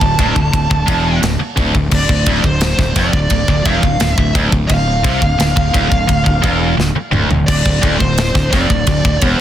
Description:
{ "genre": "heavy metal", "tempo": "86 BPM", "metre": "4/4", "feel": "straight", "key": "D minor", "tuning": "A4 = 440 Hz", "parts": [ { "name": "high-gain lead guitar", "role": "melody", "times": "0.0-9.4 s", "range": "C5 to A5", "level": "-20 LUFS", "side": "right 1 dB", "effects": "distortion, tape echo" }, { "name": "high-gain distorted guitar", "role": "riff", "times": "0.0-9.4 s", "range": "D2 to C3", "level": "-16 LUFS", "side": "equal", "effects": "distortion" }, { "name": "fuzz fingered electric bass", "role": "bass", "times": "0.0-9.4 s", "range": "D1 to C2", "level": "-18 LUFS", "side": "equal", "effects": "overdrive" }, { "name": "tight metal drum kit", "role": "drums", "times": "0.0-9.4 s", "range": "crash cymbal, kick drum, ride cymbal, snare drum, toms", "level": "-17 LUFS", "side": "equal", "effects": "soft clipping on snare" } ], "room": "little or no reverb", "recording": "dense, heavily limited modern master", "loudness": "-12 LUFS", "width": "side -11 dB against mid", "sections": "0.0-9.4 A section", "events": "drum fill 6.8-7.5", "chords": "0.0 Dm" }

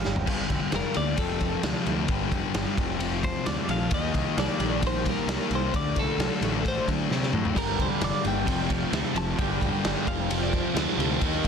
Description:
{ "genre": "quiet-loud alternative rock", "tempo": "132 BPM", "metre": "4/4", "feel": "straight", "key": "G minor", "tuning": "A4 = 440 Hz", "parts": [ { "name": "twelve-string electric guitar", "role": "melody", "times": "0.0-10.6 s", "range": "A4 to A5", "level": "-32 LUFS", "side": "left 1 dB", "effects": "phaser, plate reverb, tape echo" }, { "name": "fingerpicked steel-string acoustic guitar", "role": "arpeggios", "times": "0.0-11.5 s", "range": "F2 to F4", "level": "-34 LUFS", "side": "right 12 dB", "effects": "tape echo" }, { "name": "growling picked electric bass", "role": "bass", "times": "0.0-11.5 s", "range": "F1 to D3", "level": "-31 LUFS", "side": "equal", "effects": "overdrive" }, { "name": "raw garage drum kit", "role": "drums", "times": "0.0-11.5 s", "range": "crash cymbal, kick drum, ride cymbal, snare drum, toms", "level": "-29 LUFS", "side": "equal", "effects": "none" }, { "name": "thick fuzz guitar", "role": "riff", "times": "0.3-11.5 s", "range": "F2 to Eb4", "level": "-30 LUFS", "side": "left 13 dB", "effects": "distortion" }, { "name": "overdriven semi-hollow guitar", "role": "riff", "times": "7.6-11.5 s", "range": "F2 to Eb4", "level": "-30 LUFS", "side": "right 15 dB", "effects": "phaser" } ], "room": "light reverb", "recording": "dense, heavily limited modern master", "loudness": "-24 LUFS", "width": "side -6 dB against mid", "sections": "0.3-11.5 A section", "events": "drum fill 0.1, 7.1-7.6; clean electric guitar solo 0.3-11.5", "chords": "0.3 Gm; 1.2 F; 2.1 G5; 2.8 F; 3.9 Eb; 5.7 D; 7.6 Gm; 8.5 F; 9.4 G5; 10.1 F" }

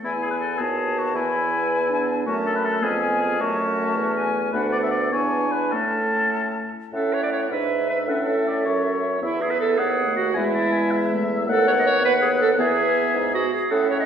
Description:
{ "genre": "quick classical-period movement for wind quintet", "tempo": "106 BPM (dotted quarters)", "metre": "6/8", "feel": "rubato", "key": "A major", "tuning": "A4 = 442 Hz", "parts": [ { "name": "warm oboe", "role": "second line", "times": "0.0-14.1 s", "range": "E4 to A5", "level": "-26 LUFS", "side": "left 3 dB", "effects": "none" }, { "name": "bright clarinet", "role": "accompaniment", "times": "0.0-14.1 s", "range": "C#4 to D#5", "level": "-24 LUFS", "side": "right 4 dB", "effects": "none" }, { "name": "dark French horn", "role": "accompaniment", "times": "0.0-14.1 s", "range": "G#3 to D4", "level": "-28 LUFS", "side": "right 1 dB", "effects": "none" }, { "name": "mellow bassoon", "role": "bass", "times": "0.0-14.1 s", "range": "D2 to A2", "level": "-26 LUFS", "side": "equal", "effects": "none" }, { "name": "bright concert flute", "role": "melody", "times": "0.1-14.1 s", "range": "E5 to A5", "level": "-28 LUFS", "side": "left 2 dB", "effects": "none" } ], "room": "wet recital hall reverb, RT60 1.7 s", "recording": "recorded in a church or concert hall", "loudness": "-19 LUFS", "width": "side -8 dB against mid", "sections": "0.0-6.9 A section; 6.9-14.1 A section", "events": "none", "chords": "0.0 E; 0.6 B7/D#; 1.2 E; 2.3 F#m; 2.8 C#7/E#; 3.4 F#m; 4.5 Bm/D; 5.1 E7; 5.7 A; 7.5 E7/G#; 8.1 A; 9.2 E5; 9.8 B7/D#; 10.4 E; 11.5 B/D#; 12.6 E" }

